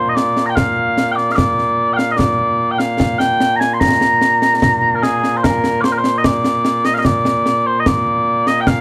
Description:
scottish traditional, Scottish pipe music; 74 BPM; 3/4; straight; Bb mixolydian; A4 = 440 Hz
mellow small bagpipes; melody; 0.0-8.8 s; Bb2 to C6; -17 LUFS; equal
concert snare drum and concert bass drum; drums; 0.2-8.8 s; -21 LUFS; equal
light reverb; -15 LUFS; mono
0.0-5.4 A section; 5.4-8.8 B section
| 0.57 1.38 2.19 | 3.00 3.81 4.62 | 5.43 6.24 7.05 | 7.87 8.68

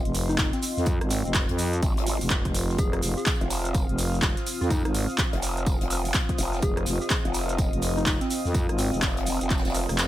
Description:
bass house; 125 BPM; 4/4; swing 61% on 16ths; F minor; A4 = 441 Hz
dark analog pad; sustained chords; 0.0-10.1 s; C4 to F5; -35 LUFS; equal; chorus, phaser, sidechain pumping
growl bass; bass; 0.0-9.9 s; F1 to Ab1; -28 LUFS; equal; chorus, overdrive, sidechain pumping
warbly tape-like pad; texture; 0.0-10.1 s; C4 to Eb6; -35 LUFS; right 1 dB; chorus, built-in reverb, sidechain pumping
growling FM bass; bass; 0.1-10.1 s; F1 to F2; -27 LUFS; equal; overdrive, sidechain pumping
big-room dance drum kit; drums; 0.1-10.1 s; handclaps, hi-hat, rim click; -30 LUFS; right 1 dB; overdrive
swinging big-band drum kit; drums; 0.1-10.1 s; hi-hat, snare drum, tambourine; -40 LUFS; left 1 dB
shekere; percussion; 0.1-10.1 s; -38 LUFS; right 2 dB
soft struck synth lead; melody; 0.3-9.0 s; C4 to Ab4; -33 LUFS; left 1 dB; chorus, vintage 12-bit sampler grit, tape echo
electronic kick drum; drums; 0.4-9.6 s; -26 LUFS; equal
swell; sound effects; 9.8-10.1 s; -41 LUFS; right 5 dB
little or no reverb; -23 LUFS; side -14 dB against mid
0.0-10.1 A section
0.0 F5
0.39 | 0.87 1.35 1.83 2.31 | 2.79 3.27 3.75 4.23 | 4.71 5.19 5.67 6.15 | 6.63 7.11 7.59 8.07 | 8.55 9.03 9.51 9.99

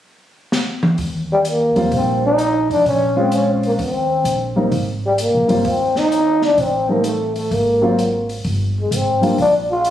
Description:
jazz, small-group swing and bop; 129 BPM; 4/4; swing 67% on 8ths; Eb major; A4 = 442 Hz
open jazz drum kit; drums; 0.5-9.9 s; hi-hat, kick drum, snare drum, toms; -25 LUFS; equal
upright bass; bass; 1.0-9.9 s; G1 to F2; -24 LUFS; right 1 dB
growling trombone; melody; 1.3-9.9 s; G3 to F4; -16 LUFS; left 1 dB
dark baby grand piano; accompaniment; 1.8-9.4 s; Gb3 to F4; -19 LUFS; left 1 dB
moderate large studio reverb, RT60 1.5 s; recorded on a phone in the room, studio reverb, compression; -15 LUFS; side -11 dB against mid
1.0-9.9 A section
drum fill 0.5-1.0
0.0 N.C.; 1.0 Eb6; 2.9 Bbm9; 3.8 Eb6; 4.7 Abmaj7sus2; 6.6 Am7b5; 7.5 Ab13; 8.4 Gm
0.05 0.52 | 0.99 1.45 1.92 2.38 | 2.85 3.32 3.78 4.25 | 4.72 5.18 5.65 6.12 | 6.58 7.05 7.52 7.98 | 8.45 8.92 9.38 9.85

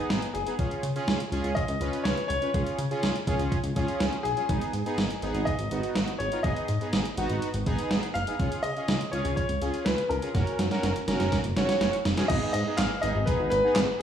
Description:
synth-pop; 123 BPM; 4/4; straight; G# dorian; A4 = 440 Hz
analog synth brass; accompaniment; 0.0-13.9 s; B3 to C#5; -31 LUFS; right 2 dB; chorus
chorused synth bass; bass; 0.1-13.9 s; E#1 to C#3; -30 LUFS; equal
clean 12-bit digital drum machine; drums; 0.1-13.9 s; crash cymbal, handclaps, hi-hat, kick drum, snare drum; -29 LUFS; right 1 dB; gated reverb
clear baby grand piano; melody; 0.3-14.0 s; G#4 to E#5; -30 LUFS; left 2 dB; slapback echo
light reverb; studio reverb; -25 LUFS; side -9 dB against mid
0.0-12.3 A section; 12.3-14.0 B section
drum fill 10.3-12.3
0.0 G#m; 0.6 C#; 4.5 G#m; 8.4 C#; 10.3 F#; 12.3 G#m
0.10 | 0.59 1.08 1.57 2.05 | 2.54 3.03 3.52 4.00 | 4.49 4.98 5.47 5.96 | 6.44 6.93 7.42 7.91 | 8.39 8.88 9.37 9.86 | 10.35 10.83 11.32 11.81 | 12.30 12.79 13.27 13.76

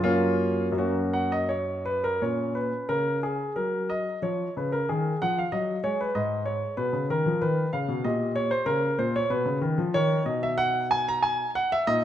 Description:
classical, baroque-style suite movement for grand piano; 81-97 BPM; 3/4; rubato; F# major; A4 = 443 Hz
warm concert grand piano; solo; 0.0-12.0 s; F#2 to A#5; -24 LUFS; equal
wet recital hall reverb, RT60 1.3 s; -24 LUFS; side -11 dB against mid
0.0-2.2 A section; 2.2-12.0 B section
0.0 F#; 2.2 F#/A#; 4.2 C#69; 5.5 B69/F#; 6.2 G#m; 8.0 Gdim/Bb; 9.3 Badd9; 9.9 B
| 0.04 0.77 1.49 | 2.22 2.90 3.57 | 4.23 4.88 5.52 | 6.15 6.79 7.42 | 8.04 8.66 9.29 | 9.94 10.58 11.23 | 11.87

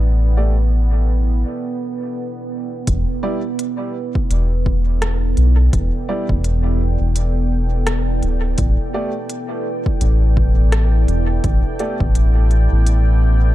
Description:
ambient dub; 84 BPM; 4/4; swing 58% on 16ths; E minor; A4 = 440 Hz
deep dark ambient pad; sustained chords; 0.0-13.5 s; B3 to G5; -24 LUFS; right 3 dB; chorus, built-in reverb
round analog bass; bass; 0.0-13.5 s; D1 to B1; -15 LUFS; equal
dark upright piano; stabs; 0.4-12.0 s; G3 to D5; -28 LUFS; right 1 dB; dub echo
electronic kick drum; drums; 2.9-12.1 s; -21 LUFS; equal; overdrive
organic electronic drum kit; drums; 2.9-13.0 s; hi-hat, rim click; -28 LUFS; equal; dub echo
little or no reverb; dark, warm production; -15 LUFS; side -15 dB against mid
0.0-2.9 A section; 2.9-13.5 B section
break 1.4-2.9
0.0 A7sus4; 2.9 Em7; 8.6 A7sus4
| 0.01 0.73 1.44 2.16 | 2.87 3.58 4.30 5.01 | 5.73 6.44 7.16 7.87 | 8.58 9.30 10.01 10.73 | 11.44 12.16 12.87

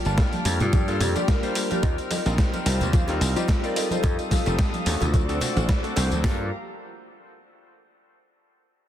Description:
nu-disco, nu disco; 109 BPM; 4/4; swing 55% on 16ths; G minor; A4 = 436 Hz
clear electric grand piano; accompaniment; 0.0-6.5 s; G3 to A5; -30 LUFS; left 2 dB; sidechain pumping, dub echo
rich chamber string section; sustained chords; 0.0-6.5 s; Bb3 to F6; -34 LUFS; left 1 dB; sidechain pumping
mellow electric guitar; riff; 0.0-6.5 s; F4 to F5; -34 LUFS; left 3 dB; ensemble chorus, vintage 12-bit sampler grit, dub echo
slap bass; bass; 0.1-6.5 s; F1 to G2; -25 LUFS; equal
dusty soul sampler-style drum kit; drums; 0.1-6.2 s; hi-hat, snare drum, tambourine; -30 LUFS; equal; overdrive, small room reverb
clean 12-bit digital drum machine; drums; 0.2-6.4 s; hi-hat, kick drum, snare drum; -22 LUFS; equal; small room reverb
bongos and congas; percussion; 0.2-6.2 s; -32 LUFS; right 3 dB
vibraphone with medium mallets; melody; 0.6-5.2 s; F4 to Bb4; -34 LUFS; equal; dub echo
digital ambience; dense, heavily limited modern master; -21 LUFS; side -11 dB against mid
0.0-6.2 A section; 6.2-8.4 B section
drop 0.0-6.2
0.0 Gm7; 1.8 Eb69; 3.8 F7; 5.1 D7; 6.2 Gm7
0.18 0.73 1.28 | 1.83 2.38 2.94 3.49 | 4.04 4.59 5.14 5.69 | 6.24

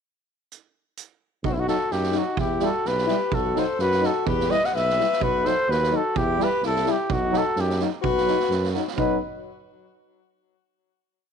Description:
balkan folk, Balkan brass band; 127 BPM; 2/4; swing 55% on 16ths; B phrygian dominant; A4 = 440 Hz
street-band drum kit; percussion; 0.5-9.2 s; hi-hat, kick drum, snare drum; -31 LUFS; right 6 dB
warm alto saxophone; second line; 1.4-9.2 s; F#3 to D#5; -28 LUFS; left 12 dB; tape echo
warm tuba; bass; 1.4-9.2 s; B1 to F#2; -28 LUFS; right 1 dB
mellow cornet; melody; 1.5-9.2 s; E4 to F#5; -24 LUFS; right 1 dB
clear trombone; accompaniment; 1.7-9.2 s; F#3 to G3; -31 LUFS; right 14 dB
warm euphonium; accompaniment; 1.7-9.2 s; D#4 to E4; -30 LUFS; left 13 dB
light reverb, small room ambience; 1960s-style stereo with parts hard left and right; -20 LUFS; side -6 dB against mid
0.5-1.4 pickup bar; 1.4-9.0 A section; 9.0-9.9 final chord
0.5 N.C.; 1.4 B; 2.4 Em; 3.3 B; 4.3 Em; 5.2 B; 6.1 Em; 7.1 B
| 0.49 0.96 | 1.43 1.90 | 2.37 2.84 | 3.31 3.79 | 4.26 4.73 | 5.20 5.68 | 6.15 6.62 | 7.09 7.56 | 8.04 8.51 | 8.97

